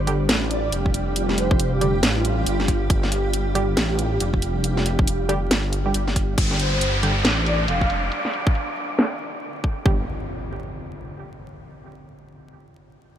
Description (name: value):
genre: deep dubstep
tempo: 138 BPM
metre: 4/4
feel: swing 61% on 16ths, half-time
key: unclear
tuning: A4 = 440 Hz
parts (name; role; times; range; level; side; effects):
- granular cloud pad; sustained chords; 0.0-6.4 s; G3 to G4; -30 LUFS; right 2 dB; built-in reverb
- dark detuned saw bass; bass; 0.0-10.1 s; F1 to A1; -24 LUFS; equal; none
- wind-like tuned noise texture; texture; 0.0-9.9 s; D4 to D5; -32 LUFS; equal; built-in reverb
- filtered dub chord stab; stabs; 0.1-7.1, 9.9-10.0 s; D3 to G4; -30 LUFS; right 2 dB; chorus, dub echo
- garage drum kit; drums; 0.1-9.7 s; crash cymbal, hi-hat, snare drum; -24 LUFS; equal; low-pass filter on hats, low-pass filter on snare, low-pass filter on cymbals
- breathy flute-like synth lead; melody; 0.5-2.8, 6.6-8.0 s; F4 to F5; -30 LUFS; equal; ensemble chorus, dub echo
- electronic kick drum; drums; 0.9-10.0 s; none; -20 LUFS; equal; none
- downlifter and impact; sound effects; 6.4-11.6 s; none; -28 LUFS; equal; none
room: light reverb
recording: vinyl crackle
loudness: -19 LUFS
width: side -10 dB against mid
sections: 0.0-6.4 A section; 6.4-9.9 B section; 9.9-11.6 C section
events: drop 0.0-6.4; filter sweep on drum 6.4-9.9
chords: 0.0 G5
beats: 0.29 0.72 | 1.16 1.59 2.03 2.46 | 2.90 3.33 3.77 4.20 | 4.64 5.07 5.51 5.94 | 6.38 6.81 7.25 7.68 | 8.12 8.55 8.99 9.42 | 9.86 10.29 10.72 11.16